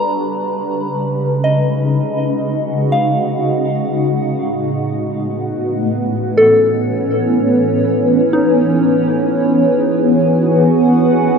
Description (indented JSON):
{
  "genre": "ambient",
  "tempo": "61 BPM",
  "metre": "4/4",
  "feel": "straight",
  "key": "unclear",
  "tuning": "A4 = 440 Hz",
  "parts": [
    { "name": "shimmering ambient pad", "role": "sustained chords", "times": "0.0-11.4 s", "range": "A2 to B4", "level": "-14 LUFS", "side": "equal", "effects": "chorus, built-in reverb, phaser" },
    { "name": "soft synth bell", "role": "arpeggios", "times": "0.0-11.4 s", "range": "D4 to Db6", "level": "-19 LUFS", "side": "left 1 dB", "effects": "chorus, diffuse ambient delay" }
  ],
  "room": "wet huge ambient reverb, RT60 8.3 s",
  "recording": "none",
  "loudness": "-13 LUFS",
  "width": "side -6 dB against mid",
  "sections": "0.0-11.4 A section",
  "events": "fade-in on ambient pad 0.0-11.4; fade-in on synth bell 0.0-11.4",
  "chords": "0.0 Dbsus4; 3.9 A; 7.8 E"
}